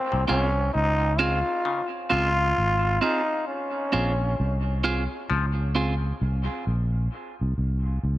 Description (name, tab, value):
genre	reggae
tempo	66 BPM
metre	4/4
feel	swing 64% on 16ths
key	Db major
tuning	A4 = 441 Hz
part	growling trombone	melody	0.0-4.8 s	C4 to F4	-26 LUFS	equal	dub echo
part	bright clav	arpeggios	0.1-5.5 s	Ab2 to F3	-34 LUFS	left 6 dB	dub echo
part	fingered electric bass	bass	0.1-8.2 s	Ab1 to Db2	-24 LUFS	equal	none
part	clean electric guitar	accompaniment	0.3-5.9 s	C4 to Ab4	-29 LUFS	right 3 dB	spring reverb, dub echo
room	light reverb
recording	faint mains hum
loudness	-22 LUFS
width	side -15 dB against mid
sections	0.0-8.2 A section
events	none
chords	0.0 Dbmaj7